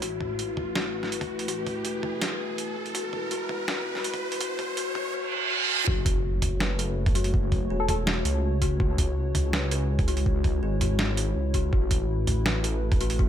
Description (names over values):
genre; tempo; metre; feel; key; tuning
half-time drum and bass; 164 BPM; 4/4; half-time; F# minor; A4 = 437 Hz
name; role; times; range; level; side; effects
dark analog pad; sustained chords; 0.0-13.3 s; G#3 to C#5; -35 LUFS; right 1 dB; chorus, sidechain pumping
kalimba; arpeggios; 0.0-13.3 s; F#4 to B4; -33 LUFS; left 8 dB; dub echo
dark detuned saw bass; bass; 0.0-13.3 s; E1 to C#2; -28 LUFS; equal; none
boom bap sampler-style drum kit; drums; 0.0-13.2 s; hi-hat, snare drum, toms; -29 LUFS; right 2 dB; overdrive
electronic kick drum; drums; 0.0-13.3 s; none; -26 LUFS; equal; overdrive, high-pass filter on kick
riser, reverse cymbal and impact; sound effects; 0.3-7.3 s; none; -31 LUFS; right 4 dB; none
soft struck synth lead; melody; 7.8-8.0 s; A4; -33 LUFS; left 3 dB; chorus, phaser, dub echo
room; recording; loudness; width
light reverb; high-pass filter; -24 LUFS; side -10 dB against mid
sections
0.0-5.9 A section; 5.9-13.3 B section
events
build-up 0.0-5.9; riser 0.3-5.1; filter sweep 0.0-5.9; reverse cymbal 5.1-5.9; drop 5.9-13.3; impact 5.9-7.3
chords
0.0 Asus2; 2.9 E; 5.9 F#m; 8.8 C#m; 11.7 Asus2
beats
| 0.02 0.39 0.75 1.12 | 1.48 1.85 2.21 2.58 | 2.95 3.31 3.68 4.04 | 4.41 4.78 5.14 5.51 | 5.87 6.24 6.61 6.97 | 7.34 7.70 8.07 8.44 | 8.80 9.17 9.53 9.90 | 10.26 10.63 11.00 11.36 | 11.73 12.09 12.46 12.82 | 13.19